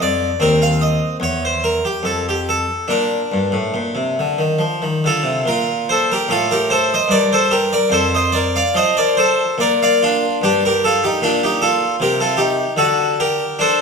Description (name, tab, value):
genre	classical, baroque-style suite movement for harpsichord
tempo	68-77 BPM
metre	3/4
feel	rubato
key	Bb major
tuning	A4 = 440 Hz
part	harpsichord	solo	0.0-13.8 s	Eb2 to F5	-14 LUFS	equal	none
room	wet recital hall reverb, RT60 1.6 s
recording	minimal, uncompressed stereo recording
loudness	-14 LUFS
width	side -5 dB against mid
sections	0.0-5.5 A section; 5.5-13.8 B section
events	none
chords	0.4 Cm/Eb; 1.2 N.C.; 2.9 Bb; 5.5 Bb5; 8.0 F; 9.6 Bb; 10.4 Gm; 12.8 D